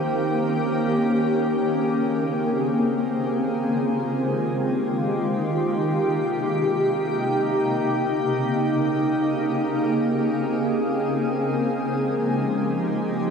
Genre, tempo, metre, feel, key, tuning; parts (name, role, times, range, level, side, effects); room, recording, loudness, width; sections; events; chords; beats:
hip hop; free time; F minor; A4 = 440 Hz
shimmering ambient pad; solo; 0.0-13.3 s; C3 to Ab4; -21 LUFS; equal; chorus, built-in reverb
wet shimmer reverb, RT60 5.2 s; -21 LUFS; side -6 dB against mid
0.0-11.4 A section; 11.4-13.3 B section
0.0 Eb7; 1.4 Bbm9; 3.4 Fm9; 5.4 Cm7; 7.4 Eb7; 9.4 Bbm9; 11.4 Fm9
free time